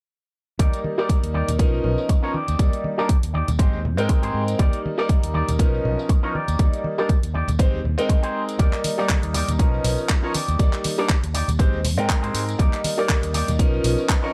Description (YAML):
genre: filtered disco house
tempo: 120 BPM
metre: 4/4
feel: swing 56% on 16ths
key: Eb major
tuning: A4 = 440 Hz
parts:
  - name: bright concert grand piano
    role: accompaniment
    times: 0.6-14.3 s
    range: E#3 to G5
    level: -28 LUFS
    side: equal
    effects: phaser, sidechain pumping, low-pass filter
  - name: electric guitar with an envelope filter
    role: riff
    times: 0.6-14.3 s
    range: Eb4 to D5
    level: -32 LUFS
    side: equal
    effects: sidechain pumping, low-pass filter
  - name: fingered electric bass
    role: bass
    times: 0.6-13.9 s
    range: Ab1 to Ab2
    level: -27 LUFS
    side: equal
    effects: sidechain pumping, low-pass filter
  - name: electronic kick drum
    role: drums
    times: 0.6-14.2 s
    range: none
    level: -21 LUFS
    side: equal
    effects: none
  - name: house drum kit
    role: drums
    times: 0.6-14.2 s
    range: handclaps, hi-hat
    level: -31 LUFS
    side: equal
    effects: sidechain pumping on hats
  - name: tambourine and congas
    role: percussion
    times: 0.6-14.3 s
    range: none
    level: -34 LUFS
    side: equal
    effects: sidechain pumping on perc, low-pass filter on perc
room: digital ambience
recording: dry, gritty hardware recording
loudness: -21 LUFS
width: mono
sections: 0.6-14.3 A section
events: none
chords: 0.6 Ebmaj7; 1.6 Bmaj9#11; 2.3 Ebmaj7; 3.6 Abmaj7; 4.6 Ebmaj7; 5.6 Bmaj9#11; 6.3 Ebmaj7; 7.6 Abmaj7; 8.6 Ebmaj7; 9.6 Bmaj9#11; 10.3 Ebmaj7; 11.6 Abmaj7; 12.6 Ebmaj7; 13.6 Bmaj9#11